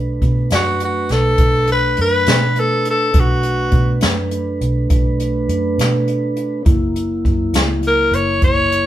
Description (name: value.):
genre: slow blues.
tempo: 68 BPM (dotted quarters).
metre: 12/8.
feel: straight.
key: B minor.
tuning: A4 = 440 Hz.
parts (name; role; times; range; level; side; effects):
mellow tonewheel organ; sustained chords; 0.0-8.9 s; F#3 to B4; -22 LUFS; right 2 dB; slow rotary speaker.
vintage muted fingered electric bass; bass; 0.0-8.9 s; F#1 to B2; -20 LUFS; equal; none.
jazz brush drum kit; drums; 0.2-8.9 s; hi-hat, kick drum, snare drum; -17 LUFS; equal; none.
growling tenor saxophone; melody; 0.6-8.9 s; F#4 to C#5; -16 LUFS; left 1 dB; none.
room: moderate studio reverb, RT60 0.6 s.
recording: band playing live in one room.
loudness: -14 LUFS.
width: side -13 dB against mid.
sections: 0.0-8.9 A section.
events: none.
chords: 0.0 Bm7; 6.7 F#7.